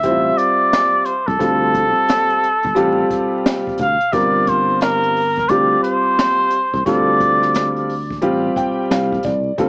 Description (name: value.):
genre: hip hop, jazz-hop.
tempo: 88 BPM.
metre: 4/4.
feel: swing 63% on 16ths.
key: D minor.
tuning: A4 = 440 Hz.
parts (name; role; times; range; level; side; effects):
trumpet with cup mute; melody; 0.0-7.8 s; A4 to F5; -16 LUFS; equal; analog delay.
warm upright piano; accompaniment; 0.0-9.7 s; G3 to G5; -19 LUFS; equal; none.
sustaining fretless electric bass; bass; 0.0-9.7 s; G1 to D2; -23 LUFS; equal; none.
jazz brush drum kit; drums; 0.0-9.7 s; hi-hat, kick drum, snare drum; -23 LUFS; equal; none.
room: moderate studio reverb, RT60 0.6 s.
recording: worn, warbling old tape, cassette tape, vinyl crackle, warbly pitch drift, small speaker sound.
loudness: -14 LUFS.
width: side -30 dB against mid.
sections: 0.0-9.6 A section.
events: upright piano fill 8.2-9.6.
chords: 0.0 Dm7; 4.1 Gm7; 6.9 Dm7.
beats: 0.04 0.72 | 1.40 2.09 2.77 3.45 | 4.13 4.81 5.50 6.18 | 6.86 7.54 8.22 8.90 | 9.59.